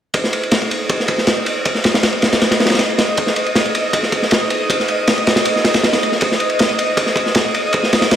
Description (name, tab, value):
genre	drum and bass, jungle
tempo	158 BPM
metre	4/4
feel	straight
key	unclear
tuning	A4 = 440 Hz
part	crunchy breakbeat drum kit	drums	0.1-8.2 s	kick drum, ride cymbal, snare drum	-14 LUFS	equal	high-pass filter on kick, high-pass filter on cymbals, high-pass filter on snare, high-pass filter on room
part	twinkling granular texture	texture	0.7-8.2 s	Eb5 to Eb6	-22 LUFS	right 1 dB	built-in reverb
room	wet echo chamber reverb, RT60 1.9 s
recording	played on a big sound system in a bare room, stone room reverb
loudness	-14 LUFS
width	side -10 dB against mid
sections	0.1-8.2 A section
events	none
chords	none